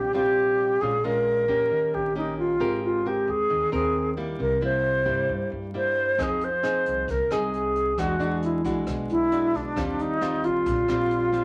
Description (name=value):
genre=bossa nova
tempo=134 BPM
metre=4/4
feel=straight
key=Eb major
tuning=A4 = 443 Hz
part: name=bright reedy wooden-headed alto flute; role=melody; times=0.0-11.4 s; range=D4 to C5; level=-26 LUFS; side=equal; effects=none
part: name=nylon-string guitar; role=accompaniment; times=0.0-11.4 s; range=G2 to Bb4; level=-31 LUFS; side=equal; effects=none
part: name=upright bass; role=bass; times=0.1-11.4 s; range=Ab1 to G2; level=-39 LUFS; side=equal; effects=none
part: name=jazz brush drum kit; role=drums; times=6.2-11.4 s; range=hi-hat, kick drum, rim click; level=-39 LUFS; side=equal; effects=none
room=wet small room reverb, RT60 0.6 s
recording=vinyl crackle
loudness=-25 LUFS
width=mono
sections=0.0-11.4 A section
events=none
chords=0.0 Eb69 (rootless); 0.8 Bbm7; 1.7 Eb7; 2.6 Abmaj9; 4.4 C7; 6.2 Fm7; 8.0 E9; 9.8 Eb69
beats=0.36 | 0.81 1.26 1.71 2.15 | 2.60 3.05 3.50 3.94 | 4.39 4.84 5.29 5.74 | 6.18 6.63 7.08 7.53 | 7.97 8.42 8.87 9.31 | 9.76 10.21 10.66 11.11